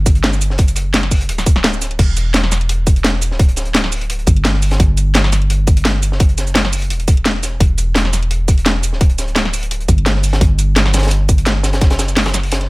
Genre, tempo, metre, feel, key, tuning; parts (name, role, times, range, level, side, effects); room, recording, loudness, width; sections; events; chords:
liquid drum and bass; 171 BPM; 4/4; straight; A4 = 440 Hz
long sustained 808-style bass; bass; 0.0-12.7 s; D1 to G1; -16 LUFS; equal
crunchy breakbeat drum kit; drums; 0.1-12.7 s; hi-hat, snare drum; -24 LUFS; equal; high-pass filter on hats, high-pass filter on snare, high-pass filter on room
electronic kick drum; drums; 0.1-11.9 s; -12 LUFS; equal
garage drum kit; drums; 0.1-12.7 s; crash cymbal, hi-hat, shaker, snare drum; -17 LUFS; equal
little or no reverb; -12 LUFS; side -22 dB against mid
0.0-2.0 A section; 2.0-12.7 A section
drop 0.0-2.0, 2.0-12.7; break 1.6-2.0